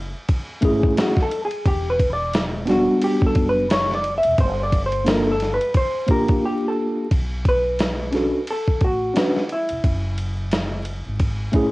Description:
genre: hip hop, jazz-hop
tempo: 88 BPM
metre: 4/4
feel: swing 59% on 16ths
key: B minor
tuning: A4 = 441 Hz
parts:
  - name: hollow-body jazz guitar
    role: melody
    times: 0.0-11.5 s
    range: E4 to E5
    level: -22 LUFS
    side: equal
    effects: cassette tape
  - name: upright bass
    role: bass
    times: 0.0-11.7 s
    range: E1 to B1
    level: -27 LUFS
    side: equal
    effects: none
  - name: dusty soul sampler-style drum kit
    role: drums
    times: 0.3-11.7 s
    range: hi-hat, kick drum, ride cymbal, snare drum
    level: -22 LUFS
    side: equal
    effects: cassette tape
  - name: mellow tine electric piano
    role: accompaniment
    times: 0.6-11.7 s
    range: G3 to B4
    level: -20 LUFS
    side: equal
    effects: medium stereo tremolo
room: moderate small room reverb, RT60 0.5 s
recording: home recording on cassette, vinyl crackle, nothing above 10.5 kHz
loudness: -18 LUFS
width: side -20 dB against mid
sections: 0.0-7.1 A section; 7.1-11.7 B section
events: hollow-body jazz guitar solo 0.0-7.1; break 6.4-7.1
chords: 0.0 F#m9 (rootless); 1.7 Em9; 4.4 Gm9; 7.1 Bm9; 9.8 F#m9

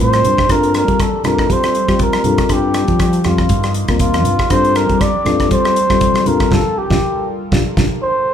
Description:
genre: electric jazz fusion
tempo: 119 BPM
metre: 4/4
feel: swing 55% on 16ths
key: G minor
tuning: A4 = 440 Hz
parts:
  - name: trumpet with bucket mute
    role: melody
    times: 0.0-8.3 s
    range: F4 to D5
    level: -17 LUFS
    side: right 1 dB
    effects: none
  - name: mellow reed electric piano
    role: accompaniment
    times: 0.0-7.9 s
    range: G3 to Bb4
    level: -20 LUFS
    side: left 7 dB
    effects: none
  - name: fretless electric bass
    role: bass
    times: 0.0-7.9 s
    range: G1 to G3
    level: -18 LUFS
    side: left 1 dB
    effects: none
  - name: damped 70s drum kit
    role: drums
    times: 0.1-7.9 s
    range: hi-hat, kick drum, rim click, snare drum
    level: -18 LUFS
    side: right 1 dB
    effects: none
  - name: congas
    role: percussion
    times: 0.1-7.9 s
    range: none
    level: -25 LUFS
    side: right 4 dB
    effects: none
  - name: chorused pulse-width pad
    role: sustained chords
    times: 0.5-8.3 s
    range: G3 to Bb4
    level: -27 LUFS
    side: right 1 dB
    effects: none
room: moderate large studio reverb, RT60 1.3 s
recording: band playing live in one room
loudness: -12 LUFS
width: side -9 dB against mid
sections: 0.0-8.3 A section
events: drum fill 0.0-0.5; band accent 6.5-8.3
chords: 0.5 Bb6/G; 1.2 Gm11; 2.2 Gsus2; 3.5 F7sus4; 4.5 Bb6/G; 5.3 G9sus4; 6.3 Gm9

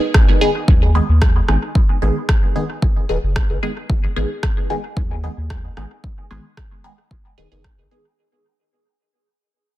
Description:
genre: dub techno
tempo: 112 BPM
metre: 4/4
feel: straight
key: G# minor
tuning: A4 = 440 Hz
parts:
  - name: electronic kick drum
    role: drums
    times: 0.1-7.8 s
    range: none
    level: -16 LUFS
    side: equal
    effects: none
  - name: electronic rim click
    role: drums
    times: 0.1-7.8 s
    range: none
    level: -24 LUFS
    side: right 1 dB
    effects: soft clipping on snare, dub echo
  - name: filtered dub chord stab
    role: stabs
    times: 0.4-8.0 s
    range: D#3 to G#4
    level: -22 LUFS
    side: equal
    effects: phaser, sidechain pumping, dub echo
  - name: soft dub sub bass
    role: bass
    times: 0.7-7.9 s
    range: D#1 to D#2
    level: -18 LUFS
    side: equal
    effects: sidechain pumping
room: little or no reverb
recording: dense, heavily limited modern master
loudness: -15 LUFS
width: side -15 dB against mid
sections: 0.0-8.2 A section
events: fade-out 0.0-8.2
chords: 0.0 G#m

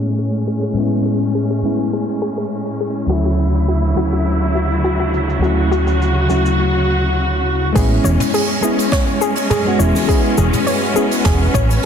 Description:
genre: sunset chillout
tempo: 103 BPM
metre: 4/4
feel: swing 53% on 16ths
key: A major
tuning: A4 = 439 Hz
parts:
  - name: mellow FM electric piano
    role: accompaniment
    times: 0.0-11.9 s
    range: D2 to F#4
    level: -18 LUFS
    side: equal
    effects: chorus, auto-pan, tape echo
  - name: dark studio string section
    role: sustained chords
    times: 0.0-11.9 s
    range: D2 to F#4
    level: -20 LUFS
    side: equal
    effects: shimmer reverb
  - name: jazz brush drum kit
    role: drums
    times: 0.0-11.9 s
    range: hi-hat, shaker, snare drum, toms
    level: -23 LUFS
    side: right 1 dB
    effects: low-pass filter on hats, low-pass filter on toms, low-pass filter on snare, low-pass filter on perc, low-pass filter on room
  - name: soft round pluck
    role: arpeggios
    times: 0.2-11.7 s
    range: F#4 to C#5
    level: -23 LUFS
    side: left 2 dB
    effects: chorus, tape echo, shimmer reverb
  - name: fingered electric bass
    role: bass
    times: 7.8-11.8 s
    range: E1 to A1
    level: -16 LUFS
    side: right 1 dB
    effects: none
  - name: electronic kick drum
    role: drums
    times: 7.8-11.7 s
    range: none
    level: -18 LUFS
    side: right 1 dB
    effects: none
  - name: congas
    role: percussion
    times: 8.0-10.5 s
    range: none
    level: -26 LUFS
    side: left 3 dB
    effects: none
room: moderate plate reverb, RT60 1.9 s, studio reverb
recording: dense, heavily limited modern master, low-pass filter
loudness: -14 LUFS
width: side -8 dB against mid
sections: 0.0-7.8 A section; 7.8-11.9 B section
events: filter sweep on synth arpeggio sound 0.0-7.8; filter sweep 0.0-7.8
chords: 0.0 Amaj7; 3.1 Dmaj9; 7.8 Amaj7 (rootless)

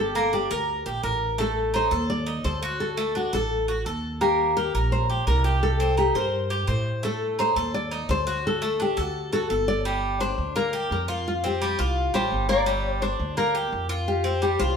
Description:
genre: latin, Cuban son and guajira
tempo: 170 BPM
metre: 4/4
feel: straight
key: G minor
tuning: A4 = 441 Hz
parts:
  - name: nylon-string guitar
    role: melody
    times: 0.0-14.8 s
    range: F4 to D5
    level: -26 LUFS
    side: left 3 dB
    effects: none
  - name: Cuban tres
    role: arpeggios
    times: 0.0-14.8 s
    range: G3 to C5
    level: -27 LUFS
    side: right 2 dB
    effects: none
  - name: upright bass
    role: bass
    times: 0.0-14.8 s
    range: G1 to A2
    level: -28 LUFS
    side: right 1 dB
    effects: none
room: moderate stone room reverb, RT60 1.1 s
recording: band playing live in one room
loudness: -22 LUFS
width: side -6 dB against mid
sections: 0.0-9.9 A section; 9.9-14.8 B section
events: none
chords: 0.0 Gmadd9; 1.4 D; 4.2 Eb; 5.6 Cm; 7.0 Adim; 8.4 D; 9.9 Gm; 11.3 Fsus2; 12.7 Gm; 14.1 Fsus2

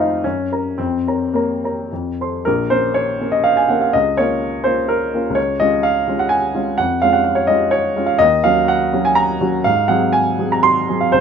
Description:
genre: classical, romantic character piece for solo piano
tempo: 105-129 BPM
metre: 3/4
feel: rubato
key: Bb minor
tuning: A4 = 440 Hz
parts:
  - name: warm baby grand piano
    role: solo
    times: 0.0-11.2 s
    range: Bb1 to C6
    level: -14 LUFS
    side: equal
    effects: none
room: light reverb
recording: none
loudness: -15 LUFS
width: side -7 dB against mid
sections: 0.0-2.4 A section; 2.4-11.2 B section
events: none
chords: 0.2 Gb; 0.8 Bbm/F; 1.9 F; 2.4 Bbm; 3.9 Bbm/Db; 5.4 Db; 6.8 Db/F; 8.2 Ebm7; 9.7 Ab7

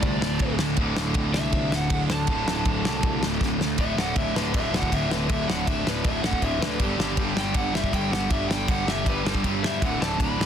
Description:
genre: punk rock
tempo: 159 BPM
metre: 4/4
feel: straight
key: D mixolydian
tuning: A4 = 439 Hz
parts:
  - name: lead guitar through a small cranked amp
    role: melody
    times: 0.0-10.5 s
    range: G4 to B5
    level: -30 LUFS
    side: left 1 dB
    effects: overdrive
  - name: sludgy distorted guitar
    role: riff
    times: 0.0-10.5 s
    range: D2 to G3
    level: -26 LUFS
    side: equal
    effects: overdrive
  - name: fuzz picked electric bass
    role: bass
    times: 0.0-10.5 s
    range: D1 to G2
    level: -30 LUFS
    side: equal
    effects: overdrive
  - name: loose indie drum kit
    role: drums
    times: 0.0-10.5 s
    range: crash cymbal, kick drum, ride cymbal, snare drum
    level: -26 LUFS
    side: equal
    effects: soft clipping on snare
room: little or no reverb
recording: dense, heavily limited modern master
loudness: -22 LUFS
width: side -8 dB against mid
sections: 0.0-3.8 A section; 3.8-10.5 B section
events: drum fill 3.4-3.8; lead electric guitar solo 3.8-10.5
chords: 0.0 D5; 6.8 G5; 9.8 D

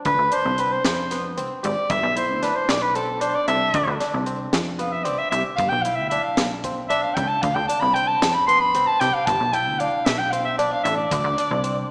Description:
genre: progressive instrumental, band music in an uneven meter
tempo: 228 BPM (eighths)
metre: 7/8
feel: straight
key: D dorian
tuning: A4 = 438 Hz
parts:
  - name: kora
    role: arpeggios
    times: 0.0-11.9 s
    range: B3 to A4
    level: -28 LUFS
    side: equal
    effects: none
  - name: mellow soprano saxophone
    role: melody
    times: 0.1-11.9 s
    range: A4 to C6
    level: -20 LUFS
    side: equal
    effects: none
  - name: plucky analog bass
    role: bass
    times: 0.1-11.8 s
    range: G1 to F2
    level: -27 LUFS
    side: equal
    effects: none
  - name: tight funk drum kit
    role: drums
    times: 0.1-11.8 s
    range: hi-hat, kick drum, snare drum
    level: -26 LUFS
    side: equal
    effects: none
room: wet concert hall reverb, RT60 1.9 s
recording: recorded in a church or concert hall, small speaker sound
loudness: -19 LUFS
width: side -38 dB against mid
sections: 0.1-11.9 A section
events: soprano saxophone solo 0.1-11.9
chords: 0.1 Dm7; 1.9 G69; 3.7 Dm7; 5.6 G69; 7.4 Dm7; 9.3 G69; 11.1 D7(no3)

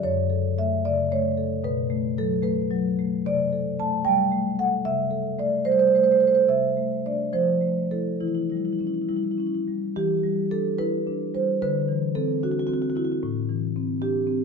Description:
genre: classical, contemporary piece for solo marimba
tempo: 74 BPM (dotted quarters)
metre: 6/8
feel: rubato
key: E minor from 3.2 s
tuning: A4 = 440 Hz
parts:
  - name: marimba with soft mallets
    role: solo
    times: 0.0-14.4 s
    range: F#2 to A5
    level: -22 LUFS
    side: equal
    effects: none
room: wet stone room reverb, RT60 1.4 s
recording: dark, warm production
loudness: -22 LUFS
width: side -5 dB against mid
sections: 0.0-9.9 A section; 9.9-14.4 B section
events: none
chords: 0.0 F#m; 1.6 B5; 3.2 Am7/C; 6.5 C69; 7.3 Fmaj7; 8.2 Em6; 9.9 Em7; 11.6 D9; 13.2 Am7

